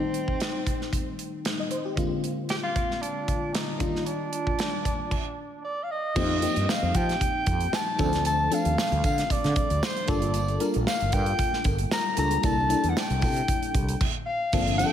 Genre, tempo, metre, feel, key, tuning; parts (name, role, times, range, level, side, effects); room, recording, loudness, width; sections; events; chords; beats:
polished 1980s jazz-funk pop; 115 BPM; 4/4; swing 54% on 16ths; A4 = 436 Hz
mellow soprano saxophone; melody; 0.0-14.9 s; C4 to Bb5; -28 LUFS; equal
FM electric piano; accompaniment; 0.0-14.9 s; D3 to Eb5; -30 LUFS; left 2 dB; ensemble chorus
modern studio drum kit; drums; 0.1-14.9 s; crash cymbal, hi-hat, kick drum, snare drum; -28 LUFS; right 1 dB
fretless electric bass; bass; 6.2-14.8 s; G1 to F3; -27 LUFS; equal
tambourine; percussion; 6.2-14.9 s; -44 LUFS; right 7 dB
moderate lush hall reverb, RT60 1.9 s; big arena sound; -24 LUFS; side -10 dB against mid
0.0-6.2 A section; 6.2-14.5 B section
stop 5.1-6.2
0.0 Am7b5; 2.0 Bb7; 3.8 Ebmaj7; 6.2 F7sus4; 8.0 Dm7; 10.1 Gm7; 12.4 C13
0.40 0.93 1.45 | 1.97 2.50 3.02 3.54 | 4.07 4.59 5.12 5.64 | 6.16 6.69 7.21 7.73 | 8.26 8.78 9.30 9.82 | 10.35 10.87 11.39 11.92 | 12.44 12.96 13.48 14.01 | 14.53